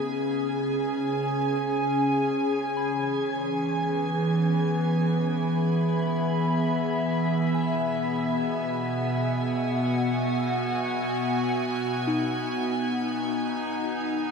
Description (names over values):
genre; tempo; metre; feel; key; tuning
ambient; free time; none; none; B major; A4 = 440 Hz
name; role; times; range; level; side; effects
warbly tape-like pad; sustained chords; 0.0-14.3 s; B2 to B5; -24 LUFS; equal; chorus, built-in reverb
soft synth bell; arpeggios; 0.0-14.3 s; D#4 to B5; -38 LUFS; left 2 dB; none
rich chamber violin section; texture; 0.0-14.3 s; G#5; -36 LUFS; right 1 dB; none
room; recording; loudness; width
wet shimmer reverb, RT60 8.1 s; none; -24 LUFS; side -5 dB against mid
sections
0.0-14.3 A section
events
fade-in on violin section 0.0-14.3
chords
0.0 C#5; 2.8 E; 7.6 Bsus4; 12.3 G#m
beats
free time